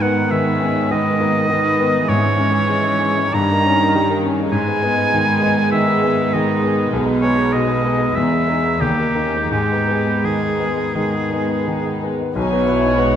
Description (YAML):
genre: classical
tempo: 81-104 BPM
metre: 4/4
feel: rubato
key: G# minor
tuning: A4 = 440 Hz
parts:
  - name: clear grand piano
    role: melody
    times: 0.0-13.2 s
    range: B1 to B4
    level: -20 LUFS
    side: left 2 dB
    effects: none
  - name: warm studio violin section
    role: melody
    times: 0.0-13.2 s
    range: D#4 to G#5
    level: -30 LUFS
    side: left 3 dB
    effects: none
  - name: clear oboe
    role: second line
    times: 0.0-12.0 s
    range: G4 to A#5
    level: -20 LUFS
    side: right 1 dB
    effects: none
  - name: dark studio violin section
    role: second line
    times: 0.0-13.2 s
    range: G3 to F#4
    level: -27 LUFS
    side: left 4 dB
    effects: none
  - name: rich symphonic viola section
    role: accompaniment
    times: 0.0-13.2 s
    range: D#3 to A#3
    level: -24 LUFS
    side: right 3 dB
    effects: none
  - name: warm studio cello section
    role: bass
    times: 0.0-13.2 s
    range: D#2 to B2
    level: -24 LUFS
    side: right 4 dB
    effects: none
  - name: timpani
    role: percussion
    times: 2.1-3.0 s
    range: G#2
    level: -27 LUFS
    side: right 1 dB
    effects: none
  - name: dark trumpet section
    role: stabs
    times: 12.4-13.2 s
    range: C#5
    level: -18 LUFS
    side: left 2 dB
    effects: none
  - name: dark studio double bass section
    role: bass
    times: 12.4-13.2 s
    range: B1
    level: -26 LUFS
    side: right 3 dB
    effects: none
room: moderate scoring stage reverb, RT60 1.6 s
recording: none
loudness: -15 LUFS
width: side -9 dB against mid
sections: 0.0-12.4 A section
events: none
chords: 0.0 G#m; 2.1 C#m/G#; 3.3 D#7/G; 4.5 G#m; 6.9 G#m/B; 8.2 Emaj7; 8.8 D#7; 9.5 G#m; 12.4 B